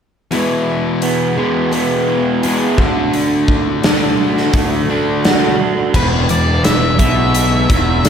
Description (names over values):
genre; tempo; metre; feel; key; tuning
classic rock; 86 BPM; 4/4; straight; E mixolydian; A4 = 440 Hz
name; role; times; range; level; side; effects
picked twelve-string acoustic guitar; accompaniment; 0.3-8.1 s; E2 to G#4; -22 LUFS; right 3 dB; none
distorted electric guitar; riff; 0.3-8.1 s; E2 to D4; -18 LUFS; left 6 dB; distortion, slapback echo
raw garage guitar; riff; 0.3-8.1 s; E2 to G#4; -19 LUFS; right 7 dB; overdrive, slapback echo
big rock drum kit; drums; 0.3-8.1 s; crash cymbal, hi-hat, kick drum, snare drum; -16 LUFS; equal; none
fuzz picked electric bass; bass; 5.9-8.1 s; E1 to B1; -17 LUFS; equal; overdrive
octave-fuzz lead guitar; melody; 6.0-8.1 s; B4 to E5; -18 LUFS; left 1 dB; distortion
room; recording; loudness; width
moderate lush hall reverb, RT60 2.7 s; big arena sound; -12 LUFS; side -8 dB against mid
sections
0.3-5.9 A section; 5.9-8.1 B section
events
none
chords
0.3 E; 2.8 D; 5.9 E